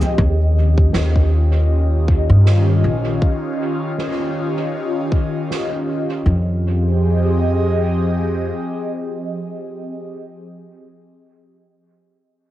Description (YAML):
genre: ambient dub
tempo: 79 BPM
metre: 4/4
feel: swing 56% on 16ths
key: unclear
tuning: A4 = 440 Hz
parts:
  - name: airy breathy pad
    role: sustained chords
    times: 0.0-10.1 s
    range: Eb3 to Eb5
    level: -21 LUFS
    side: equal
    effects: chorus, phaser, cassette tape
  - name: soft-mallet drum kit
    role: drums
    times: 0.0-5.7 s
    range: cabasa, snare drum, toms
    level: -29 LUFS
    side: right 2 dB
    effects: cassette tape, dub echo
  - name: upright bass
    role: bass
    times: 0.2-8.5 s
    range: Bb1 to G2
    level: -15 LUFS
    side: equal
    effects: none
  - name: electronic kick drum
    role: drums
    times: 0.2-5.3 s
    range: none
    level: -16 LUFS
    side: equal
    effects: cassette tape
room: little or no reverb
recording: home recording on cassette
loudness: -16 LUFS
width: side -14 dB against mid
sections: 0.2-6.3 A section; 6.3-9.3 B section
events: none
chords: 0.2 Eb7; 6.3 Fm7